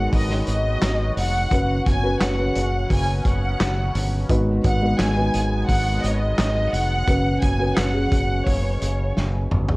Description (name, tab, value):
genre	piano-driven pop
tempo	86 BPM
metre	4/4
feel	straight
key	unclear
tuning	A4 = 440 Hz
part	warm symphonic violin section	melody	0.0-9.2 s	C#5 to G#5	-26 LUFS	equal	none
part	dark upright piano	accompaniment	0.0-9.8 s	G#2 to C#5	-26 LUFS	equal	none
part	sweeping resonant pad	sustained chords	0.0-9.8 s	B2 to F#4	-31 LUFS	equal	chorus
part	fingered electric bass	bass	0.0-9.8 s	E#1 to G#1	-23 LUFS	equal	none
part	loose indie drum kit	drums	0.1-9.8 s	handclaps, hi-hat, kick drum, snare drum, toms	-24 LUFS	equal	none
room	light reverb, small room ambience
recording	worn, warbling old tape, cassette tape, warbly pitch drift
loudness	-18 LUFS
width	side -22 dB against mid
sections	0.0-9.8 A section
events	drum fill 9.2-9.8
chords	0.0 G#m7; 1.5 F#sus4; 4.3 G#m7; 7.1 F#sus4